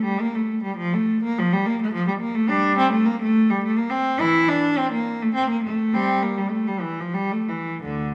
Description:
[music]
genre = classical, baroque-style suite movement for unaccompanied cello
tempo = 87-108 BPM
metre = 3/4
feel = rubato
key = D minor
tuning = A4 = 440 Hz
[part]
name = rich cello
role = solo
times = 0.0-8.1 s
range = D2 to E4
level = -22 LUFS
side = equal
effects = none
[sound]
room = moderate scoring stage reverb, RT60 1.8 s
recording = recorded in a church or concert hall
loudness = -22 LUFS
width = mono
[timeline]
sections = 0.0-8.1 A section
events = none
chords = none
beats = 0.18 | 0.77 1.37 1.95 | 2.51 3.08 3.64 | 4.21 4.78 5.35 | 5.92 6.52 7.14 | 7.80

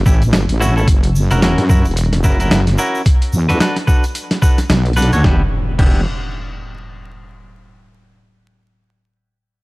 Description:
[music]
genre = glitch hop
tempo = 110 BPM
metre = 4/4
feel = swing 58% on 16ths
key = E dorian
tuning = A4 = 440 Hz
[part]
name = wobble bass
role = bass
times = 0.0-6.0 s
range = E1 to F#2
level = -14 LUFS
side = equal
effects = chorus, tube saturation
[part]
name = clean electric guitar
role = stabs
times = 0.1-6.0 s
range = A3 to C#5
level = -21 LUFS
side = equal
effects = vintage 12-bit sampler grit, sidechain pumping, low-pass filter, tape echo
[part]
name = electronic kick drum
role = drums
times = 0.1-5.9 s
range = none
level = -13 LUFS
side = equal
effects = small room ambience
[part]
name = egg shaker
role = percussion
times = 0.1-5.2 s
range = none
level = -32 LUFS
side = right 2 dB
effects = none
[part]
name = boom bap sampler-style drum kit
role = drums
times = 0.2-5.9 s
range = crash cymbal, hi-hat, snare drum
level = -19 LUFS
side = equal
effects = small room ambience
[part]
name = impact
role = sound effects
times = 5.3-7.4 s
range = none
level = -23 LUFS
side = equal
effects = none
[sound]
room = little or no reverb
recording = dry, gritty hardware recording, transformer saturation, vinyl crackle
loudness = -12 LUFS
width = side -23 dB against mid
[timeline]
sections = 0.0-5.2 A section; 5.2-7.4 B section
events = none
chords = 0.0 A7; 0.9 F#7; 3.1 Bm7; 5.2 Em7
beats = 0.34 | 0.88 1.43 1.97 2.52 | 3.06 3.61 4.15 4.70 | 5.25 5.79 6.34 6.88

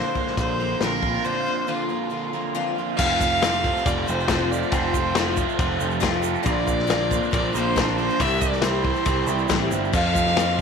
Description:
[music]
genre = folk rock and heartland rock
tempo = 138 BPM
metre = 4/4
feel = straight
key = F major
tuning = A4 = 440 Hz
[part]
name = clear fiddle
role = melody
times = 0.0-10.6 s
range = F4 to F5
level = -26 LUFS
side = equal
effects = slapback echo
[part]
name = picked twelve-string acoustic guitar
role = accompaniment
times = 0.0-10.6 s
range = F2 to A4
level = -28 LUFS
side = left 10 dB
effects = none
[part]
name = crunchy overdriven guitar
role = riff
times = 0.0-10.6 s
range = F2 to F4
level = -27 LUFS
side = right 13 dB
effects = phaser
[part]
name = vintage drum kit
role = drums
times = 0.2-10.6 s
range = crash cymbal, hi-hat, kick drum, ride cymbal, snare drum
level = -25 LUFS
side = left 3 dB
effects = none
[part]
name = picked electric bass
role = bass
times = 0.4-10.6 s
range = F1 to F2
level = -27 LUFS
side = right 1 dB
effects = none
[part]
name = warm chamber string section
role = sustained chords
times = 3.0-10.6 s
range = C4 to C5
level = -35 LUFS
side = equal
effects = none
[part]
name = egg shaker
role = percussion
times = 3.0-10.5 s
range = none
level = -39 LUFS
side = right 22 dB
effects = none
[sound]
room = light reverb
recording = 1960s-style stereo with parts hard left and right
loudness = -20 LUFS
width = side -6 dB against mid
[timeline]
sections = 0.0-3.0 A section; 3.0-10.6 B section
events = break 1.2-3.0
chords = 0.0 Bbadd9; 3.0 F; 6.5 Bbadd9; 8.2 C; 9.9 F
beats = 0.37 0.81 | 1.24 1.68 2.12 2.55 | 2.99 3.42 3.86 4.29 | 4.72 5.16 5.59 6.03 | 6.46 6.89 7.33 7.76 | 8.20 8.63 9.07 9.50 | 9.94 10.37

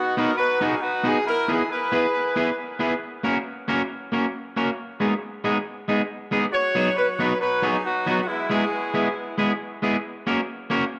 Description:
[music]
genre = ska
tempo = 137 BPM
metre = 4/4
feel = swing 57% on 8ths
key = B major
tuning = A4 = 440 Hz
[part]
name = clear horn section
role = melody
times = 0.0-2.6, 6.5-9.4 s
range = G#3 to C#5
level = -26 LUFS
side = equal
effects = dub echo
[part]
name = electric guitar at the edge of break-up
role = accompaniment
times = 0.2-10.8 s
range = F#3 to B4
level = -26 LUFS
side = equal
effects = spring reverb, dub echo
[sound]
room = moderate large studio reverb, RT60 1.1 s, small room ambience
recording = dark, warm production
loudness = -24 LUFS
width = mono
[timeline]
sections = 0.0-6.5 A section; 6.5-11.0 B section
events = none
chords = 0.0 B; 1.2 E; 3.0 F#; 4.7 G#m; 6.5 B; 8.3 E; 10.0 F#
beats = 0.36 0.80 | 1.24 1.68 2.11 2.55 | 2.99 3.43 3.87 4.31 | 4.75 5.18 5.62 6.06 | 6.50 6.94 7.38 7.82 | 8.26 8.70 9.14 9.57 | 10.01 10.45

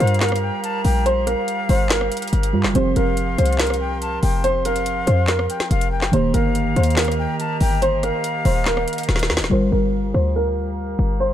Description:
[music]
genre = hip hop, trap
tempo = 142 BPM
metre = 4/4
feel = half-time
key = G minor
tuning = A4 = 445 Hz
[part]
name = dark baby grand piano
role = melody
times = 0.0-11.3 s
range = Bb4 to C5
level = -23 LUFS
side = right 1 dB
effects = low-pass filter, ping-pong delay
[part]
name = breathy silver concert flute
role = second line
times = 0.0-9.0 s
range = F5 to A5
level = -28 LUFS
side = left 5 dB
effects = ping-pong delay
[part]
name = muted felt-like synth keys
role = accompaniment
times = 0.0-11.3 s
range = Eb3 to Bb4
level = -25 LUFS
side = right 2 dB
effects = chorus, low-pass filter
[part]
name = breathy flute section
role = sustained chords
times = 0.0-11.3 s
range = G4 to C6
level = -31 LUFS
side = right 2 dB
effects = low-pass filter
[part]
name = short 808-style bass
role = bass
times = 0.0-11.3 s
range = Eb1 to G2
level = -20 LUFS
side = left 1 dB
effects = none
[part]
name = trap drum kit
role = drums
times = 0.0-9.5 s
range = handclaps, hi-hat, rim click, snare drum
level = -24 LUFS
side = equal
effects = none
[sound]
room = small room ambience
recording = dark, warm production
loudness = -17 LUFS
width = side -11 dB against mid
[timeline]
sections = 0.0-9.5 A section; 9.5-11.3 B section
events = drum fill 9.1-9.5; filter sweep 9.5-11.3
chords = 0.0 Gm7; 2.8 Fsus2; 6.1 Eb; 9.5 Gm7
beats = 0.21 0.64 | 1.06 1.48 1.91 2.33 | 2.75 3.17 3.60 4.02 | 4.44 4.86 5.29 5.71 | 6.13 6.55 6.97 7.40 | 7.82 8.24 8.66 9.09 | 9.51 9.93 10.36 10.78 | 11.20

